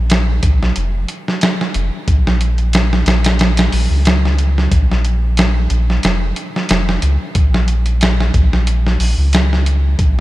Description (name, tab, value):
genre	trip hop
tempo	91 BPM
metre	4/4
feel	swing 54% on 16ths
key	Bb minor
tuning	A4 = 441 Hz
part	soft dub sub bass	bass	0.0-10.2 s	F1 to Db2	-14 LUFS	equal	none
part	dusty soul sampler-style drum kit	drums	0.1-10.2 s	hi-hat, kick drum, snare drum	-16 LUFS	equal	none
room	light reverb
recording	none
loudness	-12 LUFS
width	side -17 dB against mid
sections	0.0-10.2 A section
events	none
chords	none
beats	0.10 0.76 1.42 | 2.08 2.73 3.39 4.05 | 4.71 5.37 6.03 6.69 | 7.35 8.01 8.67 9.33 | 9.99